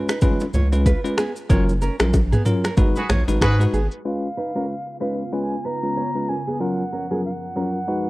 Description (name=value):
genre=afrobeats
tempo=94 BPM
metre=4/4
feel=swing 58% on 16ths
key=unclear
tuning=A4 = 440 Hz
part: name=bell-like tine electric piano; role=accompaniment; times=0.0-8.1 s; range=F#3 to B4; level=-25 LUFS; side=left 1 dB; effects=fast stereo tremolo
part: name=nylon-string guitar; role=riff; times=0.1-7.7 s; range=B3 to C#5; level=-29 LUFS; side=right 3 dB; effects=tape echo
part: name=afro-pop drum kit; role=drums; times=0.1-4.0 s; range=finger snaps, kick drum, rim click, shaker, toms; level=-20 LUFS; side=equal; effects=none
part: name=congas and bongos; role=percussion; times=0.2-3.6 s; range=none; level=-28 LUFS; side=right 1 dB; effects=none
part: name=round analog bass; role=bass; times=0.5-3.9 s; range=F#1 to G#2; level=-20 LUFS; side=equal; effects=none
part: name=warm horn section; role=second line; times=3.0-3.6 s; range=F#4 to B4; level=-27 LUFS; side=equal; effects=none
part: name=glassy FM pad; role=sustained chords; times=4.7-8.1 s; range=F#2 to A#4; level=-33 LUFS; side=equal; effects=ensemble chorus, built-in reverb, phaser
part: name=jazz flute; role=melody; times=4.1-8.1 s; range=E#5 to A#5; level=-29 LUFS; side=equal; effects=none
room=studio reverb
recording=worn, warbling old tape, cassette tape, warbly pitch drift, low-pass filter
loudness=-19 LUFS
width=side -20 dB against mid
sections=0.0-4.1 A section; 4.1-8.1 B section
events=band accent 1.5-4.1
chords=0.0 C#7; 1.5 F#maj7; 2.8 G#m7; 4.1 C#7; 6.6 F#maj7